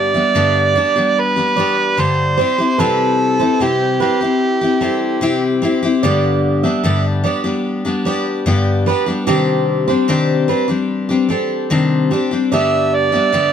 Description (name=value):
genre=acoustic pop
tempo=74 BPM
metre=4/4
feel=straight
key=G major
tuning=A4 = 435 Hz
part: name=overdriven harmonica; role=melody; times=0.0-5.6, 12.5-13.5 s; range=G4 to E5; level=-16 LUFS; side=right 4 dB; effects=none
part: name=picked steel-string acoustic guitar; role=accompaniment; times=0.0-13.5 s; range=G2 to G4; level=-16 LUFS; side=left 3 dB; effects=none
part: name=fingerpicked steel-string acoustic guitar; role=arpeggios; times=0.1-13.5 s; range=G4 to E5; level=-22 LUFS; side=right 9 dB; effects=none
room=light reverb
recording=none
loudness=-13 LUFS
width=side -8 dB against mid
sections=0.0-13.5 A section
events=none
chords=0.0 G; 2.4 C; 6.0 G; 9.3 Cmadd9; 12.5 G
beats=0.35 1.16 1.97 | 2.78 3.59 4.40 5.21 | 6.03 6.84 7.65 8.46 | 9.27 10.08 10.89 11.71 | 12.52 13.33